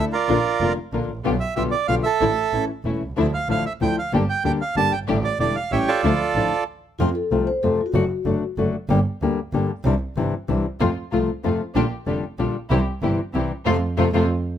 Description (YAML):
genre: tango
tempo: 188 BPM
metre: 3/4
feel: rubato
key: D harmonic minor, F major from 7.0 s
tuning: A4 = 440 Hz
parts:
  - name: bandoneon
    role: melody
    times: 0.0-6.6 s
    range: F4 to A5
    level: -22 LUFS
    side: right 6 dB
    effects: none
  - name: flamenco guitar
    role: accompaniment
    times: 0.0-14.2 s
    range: B2 to G4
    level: -23 LUFS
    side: left 5 dB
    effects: none
  - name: muted studio string section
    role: stabs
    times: 0.0-6.5, 10.8-14.2 s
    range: F3 to Bb4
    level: -28 LUFS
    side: right 1 dB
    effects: none
  - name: clear double bass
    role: bass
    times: 0.0-14.3 s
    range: E1 to F2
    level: -24 LUFS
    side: right 2 dB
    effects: none
  - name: vibraphone with soft mallets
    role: second line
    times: 7.0-8.5 s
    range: F4 to C5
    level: -24 LUFS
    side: left 4 dB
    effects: none
room: little or no reverb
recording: close, detailed microphones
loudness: -19 LUFS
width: side -10 dB against mid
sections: 0.0-7.0 A section; 7.0-14.6 B section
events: stop 6.7-7.0; band accent 13.7-14.6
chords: 0.3 Bb; 1.2 G7/B; 2.2 Asus4; 2.5 A; 3.2 Dmadd9; 4.1 Gm; 5.1 A7sus4; 5.7 A7; 6.0 Dmadd9; 7.0 F; 7.9 D/F#; 8.9 Gm; 9.8 Cadd9; 10.8 F; 11.8 Bb6; 12.7 C; 13.7 F